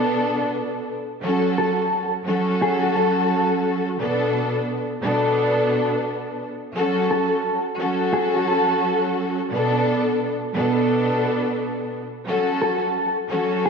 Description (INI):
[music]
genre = hip hop, boom-bap hip-hop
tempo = 87 BPM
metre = 4/4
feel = swing 62% on 16ths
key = F# minor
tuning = A4 = 439 Hz
[part]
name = warm studio string section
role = accompaniment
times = 0.0-13.7 s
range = B2 to A4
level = -20 LUFS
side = equal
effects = cassette tape, high-pass filter, low-pass filter
[part]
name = mellow electric guitar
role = melody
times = 1.6-13.7 s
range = F#4 to A4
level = -24 LUFS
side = equal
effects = lush chorus, high-pass filter, low-pass filter, ping-pong delay
[sound]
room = wet lush hall reverb, RT60 2.5 s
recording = dreamy mix soaked in reverb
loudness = -19 LUFS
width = side -5 dB against mid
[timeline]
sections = 0.0-13.7 A section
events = none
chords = 0.0 Bm7; 1.2 F#m; 4.0 Bm7; 6.8 F#m; 9.5 Bm7; 12.3 F#m